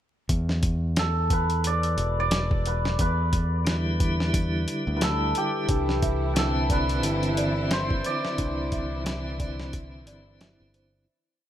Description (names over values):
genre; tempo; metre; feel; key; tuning
trip hop; 89 BPM; 4/4; swing 58% on 16ths; E minor; A4 = 440 Hz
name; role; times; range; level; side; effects
modern bright fingered electric bass; bass; 0.3-11.1 s; E1 to E2; -27 LUFS; equal; none
dusty soul sampler-style drum kit; drums; 0.3-10.9 s; hi-hat, kick drum, snare drum; -27 LUFS; equal; none
cimbalom; melody; 1.0-10.5 s; G4 to D5; -29 LUFS; equal; tape echo
tonewheel organ; accompaniment; 3.6-11.1 s; D3 to E4; -31 LUFS; equal; overdrive, slow rotary speaker, tremolo, tape echo
clear studio string section; sustained chords; 5.7-11.1 s; E3 to E4; -35 LUFS; left 1 dB; none
celesta; arpeggios; 5.7-11.1 s; D4 to E5; -34 LUFS; right 3 dB; none
room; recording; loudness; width
light reverb, small room ambience; vinyl crackle; -23 LUFS; side -11 dB against mid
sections
0.3-11.1 groove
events
fade-out 7.5-11.1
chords
0.3 Em7; 5.7 Cadd9